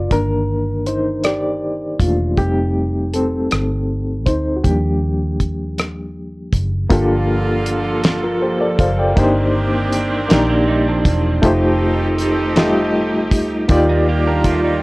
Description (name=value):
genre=slow six-eight R&B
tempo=53 BPM (dotted quarters)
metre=6/8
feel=straight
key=unclear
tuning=A4 = 443 Hz
part: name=reed electric piano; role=accompaniment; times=0.0-14.8 s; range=Eb3 to G5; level=-18 LUFS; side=left 1 dB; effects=overdrive, tremolo, plate reverb
part: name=vintage muted fingered electric bass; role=bass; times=0.0-14.8 s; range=E1 to Eb2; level=-20 LUFS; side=equal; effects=tube saturation
part: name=damped 70s drum kit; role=drums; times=0.1-14.6 s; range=hi-hat, kick drum, rim click, snare drum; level=-17 LUFS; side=equal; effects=none
part: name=rich studio string section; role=sustained chords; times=6.9-14.8 s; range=Eb3 to A4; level=-24 LUFS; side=right 2 dB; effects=plate reverb
part: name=clear horn section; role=stabs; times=6.9-14.8 s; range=D3 to A4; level=-25 LUFS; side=right 2 dB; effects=tape echo, plate reverb
part: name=electric guitar at the edge of break-up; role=second line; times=10.3-14.8 s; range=F3 to Bb4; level=-23 LUFS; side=right 4 dB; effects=spring reverb, plate reverb
room=moderate studio ambience, RT60 0.5 s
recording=worn, warbling old tape, cassette tape, warbly pitch drift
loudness=-15 LUFS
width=side -22 dB against mid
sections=0.0-6.9 A section; 6.9-14.8 B section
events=reed electric piano solo 0.0-6.9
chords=0.1 Ebmaj9#11; 2.4 F9; 4.6 Ebmaj9; 6.9 Gm9; 9.2 Cm9/G; 11.4 F9; 13.7 Ebmaj9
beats=| 0.11 1.25 | 2.38 3.51 | 4.64 5.77 | 6.91 8.04 | 9.17 10.30 | 11.43 12.57 | 13.70